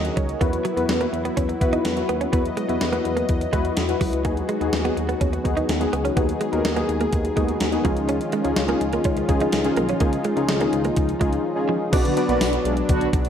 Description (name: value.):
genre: 1980s-style pop.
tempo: 125 BPM.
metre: 4/4.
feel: straight.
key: unclear.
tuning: A4 = 440 Hz.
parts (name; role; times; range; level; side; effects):
warm analog keys; accompaniment; 0.0-13.3 s; B3 to F#5; -23 LUFS; left 2 dB; chorus.
brassy analog pad; sustained chords; 0.0-13.3 s; D#3 to D#5; -30 LUFS; left 1 dB; chorus.
smooth synth bass; bass; 0.0-13.3 s; B1 to E2; -28 LUFS; equal; none.
gated 80s digital drum machine; drums; 0.0-13.3 s; crash cymbal, hi-hat, kick drum, snare drum, tambourine; -24 LUFS; equal; gated reverb, gated reverb snare.
direct-recorded clean electric guitar; riff; 0.2-11.8 s; E#3 to D#4; -29 LUFS; right 5 dB; wide subtle chorus, ping-pong delay.
mellow synth brass; stabs; 12.1-13.1 s; D3 to A#4; -27 LUFS; right 1 dB; chorus, ping-pong delay.
room: light reverb.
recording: none.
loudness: -19 LUFS.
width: side -8 dB against mid.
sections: 0.0-11.9 A section; 11.9-13.3 B section.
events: none.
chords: 0.4 Esus2; 4.2 B6; 7.8 C#add9; 11.9 Bm.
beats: | 0.41 0.89 1.37 1.85 | 2.33 2.81 3.29 3.77 | 4.25 4.73 5.21 5.69 | 6.17 6.65 7.13 7.61 | 8.09 8.57 9.05 9.53 | 10.01 10.49 10.97 11.45 | 11.93 12.41 12.89.